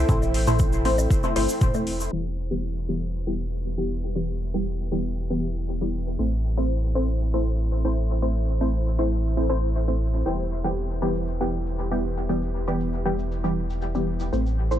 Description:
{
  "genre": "dub techno",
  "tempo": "118 BPM",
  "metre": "4/4",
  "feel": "straight",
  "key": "E minor",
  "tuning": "A4 = 440 Hz",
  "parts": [
    { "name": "dark analog pad", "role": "sustained chords", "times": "0.0-14.8 s", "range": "E4 to E5", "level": "-35 LUFS", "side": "equal", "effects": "chorus, sidechain pumping" },
    { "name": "warm sub bass", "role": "bass", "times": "0.0-14.8 s", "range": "E1 to A1", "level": "-26 LUFS", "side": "equal", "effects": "sidechain pumping" },
    { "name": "bubbling stepped-filter texture", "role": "texture", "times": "0.0-2.1 s", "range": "G5", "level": "-43 LUFS", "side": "right 6 dB", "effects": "none" },
    { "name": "filtered dub chord stab", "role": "stabs", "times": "0.1-14.8 s", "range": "E3 to C5", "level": "-27 LUFS", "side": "equal", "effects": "chorus, phaser, sidechain pumping, dub echo" },
    { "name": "electronic kick drum", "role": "drums", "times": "0.1-1.7 s", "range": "none", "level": "-23 LUFS", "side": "equal", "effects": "overdrive" },
    { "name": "electronic toms and woodblock", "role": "percussion", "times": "0.1-1.8 s", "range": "none", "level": "-29 LUFS", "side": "left 1 dB", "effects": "none" },
    { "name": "tube shaker", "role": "percussion", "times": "0.1-2.1, 10.3-14.8 s", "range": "none", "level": "-38 LUFS", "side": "right 2 dB", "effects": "none" },
    { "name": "electronic hi-hat", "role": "drums", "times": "0.3-2.0 s", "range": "none", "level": "-34 LUFS", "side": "left 3 dB", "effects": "overdrive" }
  ],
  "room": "little or no reverb",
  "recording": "dark, warm production, low-pass filter",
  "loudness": "-22 LUFS",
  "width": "side -11 dB against mid",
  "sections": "0.0-2.1 A section; 2.1-14.8 B section",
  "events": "filter sweep on analog synth pad 2.1-14.8; filter sweep 2.1-14.8",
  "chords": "0.0 Am; 2.1 Em; 6.2 Am; 10.3 Em",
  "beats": "| 0.09 0.60 1.10 1.61 | 2.12 2.63 3.14 3.65 | 4.16 4.67 5.17 5.68 | 6.19 6.70 7.21 7.71 | 8.22 8.73 9.24 9.75 | 10.26 10.77 11.28 11.78 | 12.29 12.80 13.31 13.82 | 14.33"
}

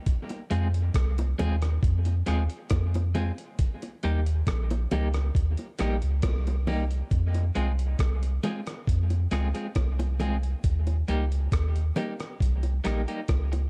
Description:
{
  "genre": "dub reggae",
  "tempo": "68 BPM",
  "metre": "4/4",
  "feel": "straight",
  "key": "F minor",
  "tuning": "A4 = 440 Hz",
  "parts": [
    { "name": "dusty soul sampler-style drum kit", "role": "drums", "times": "0.1-13.7 s", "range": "hi-hat, kick drum, rim click", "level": "-31 LUFS", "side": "equal", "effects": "none" },
    { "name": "bongos", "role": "percussion", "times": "0.3-13.7 s", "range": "none", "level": "-39 LUFS", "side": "equal", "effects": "high-pass filter on perc, dub echo" },
    { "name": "electric guitar at the edge of break-up", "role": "accompaniment", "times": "0.5-13.6 s", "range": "G3 to Ab4", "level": "-36 LUFS", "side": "equal", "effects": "tremolo, high-pass filter, dub echo" },
    { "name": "soft dub sub bass", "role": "bass", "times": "0.5-13.7 s", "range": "Bb1 to F2", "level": "-28 LUFS", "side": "equal", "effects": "none" }
  ],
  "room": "digital ambience",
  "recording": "dark, warm production, lossy compression artefacts",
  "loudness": "-27 LUFS",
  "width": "mono",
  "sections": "0.0-7.1 A section; 7.1-13.7 B section",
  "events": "none",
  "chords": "0.1 Fm; 3.6 Eb; 7.1 Fm; 10.6 Eb",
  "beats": "| 0.07 0.95 1.83 2.71 | 3.59 4.47 5.35 6.23 | 7.11 7.99 8.88 9.76 | 10.64 11.52 12.40 13.29"
}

